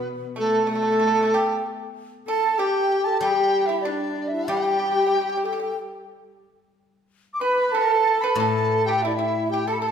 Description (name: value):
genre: chinese traditional, Chinese chamber ensemble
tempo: 94 BPM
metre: 4/4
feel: straight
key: unclear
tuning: A4 = 440 Hz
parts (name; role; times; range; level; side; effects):
- reedy large dizi; melody; 0.0-9.9 s; A4 to D6; -24 LUFS; right 1 dB; none
- pipa; second line; 0.0-9.9 s; A3 to B4; -28 LUFS; right 2 dB; none
- rich horsehead fiddle; second line; 0.0-9.9 s; A3 to B4; -27 LUFS; right 2 dB; none
- steel-string zither; accompaniment; 0.0-9.9 s; A2 to G3; -32 LUFS; left 3 dB; none
- xiao; second line; 0.4-9.9 s; D4 to B4; -27 LUFS; left 4 dB; none
room: wet recital hall reverb, RT60 1.7 s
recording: minimal, uncompressed stereo recording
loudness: -20 LUFS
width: side -7 dB against mid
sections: 0.0-9.9 A section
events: none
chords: none